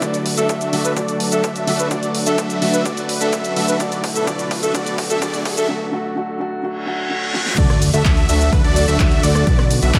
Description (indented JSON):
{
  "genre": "EDM, festival progressive house",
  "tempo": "127 BPM",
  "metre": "4/4",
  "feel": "straight",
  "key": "D major",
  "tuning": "A4 = 440 Hz",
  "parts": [
    { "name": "dark baby grand piano", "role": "accompaniment", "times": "0.0-7.6 s", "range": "D3 to F#4", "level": "-26 LUFS", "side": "equal", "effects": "sidechain pumping, dub echo" },
    { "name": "lush unison pad", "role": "sustained chords", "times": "0.0-10.0 s", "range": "B2 to D5", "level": "-30 LUFS", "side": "equal", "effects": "chorus, sidechain pumping" },
    { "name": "unison lead", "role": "arpeggios", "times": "0.0-10.0 s", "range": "B4 to E5", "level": "-27 LUFS", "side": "equal", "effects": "subtle chorus, sidechain pumping, dub echo" },
    { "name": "supersaw chords", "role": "riff", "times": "0.0-10.0 s", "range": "A3 to E5", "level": "-27 LUFS", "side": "equal", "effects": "phaser, sidechain pumping, low-pass filter, dub echo" },
    { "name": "big-room dance drum kit", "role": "drums", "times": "0.0-10.0 s", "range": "crash cymbal, handclaps, hi-hat, rim click, shaker, snare drum", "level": "-27 LUFS", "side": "equal", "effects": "none" },
    { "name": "electronic kick drum", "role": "drums", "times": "0.0-10.0 s", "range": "none", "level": "-22 LUFS", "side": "equal", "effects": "overdrive, high-pass filter on kick, high-pass filter on room" },
    { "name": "riser, reverse cymbal and sub drop", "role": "sound effects", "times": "3.4-9.5 s", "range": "none", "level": "-30 LUFS", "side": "equal", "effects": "none" },
    { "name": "mellow alto saxophone", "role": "melody", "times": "0.4-5.7 s", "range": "A4 to B4", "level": "-27 LUFS", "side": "equal", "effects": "dub echo" },
    { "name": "fat analog bass", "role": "bass", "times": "7.6-10.0 s", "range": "B1 to D2", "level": "-20 LUFS", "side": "equal", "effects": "sidechain pumping" }
  ],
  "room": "light reverb",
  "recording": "high-pass filter",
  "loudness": "-18 LUFS",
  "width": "mono",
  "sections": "0.0-7.6 A section; 7.6-10.0 B section",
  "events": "build-up 0.0-7.6; filter sweep on supersaw synth 0.0-7.6; filter sweep on analog synth lead 0.0-7.6; drum fill 0.0-5.7, 7.3; reverse cymbal 6.8-7.6; drop 7.6-10.0; impact 7.6-9.5",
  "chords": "0.0 D; 1.9 Bm; 3.8 Bm7; 5.7 D; 9.5 Bm",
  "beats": "| 0.02 0.49 0.97 1.44 | 1.91 2.38 2.86 3.33 | 3.80 4.27 4.75 5.22 | 5.69 6.16 6.64 7.11 | 7.58 8.05 8.53 9.00 | 9.47 9.94"
}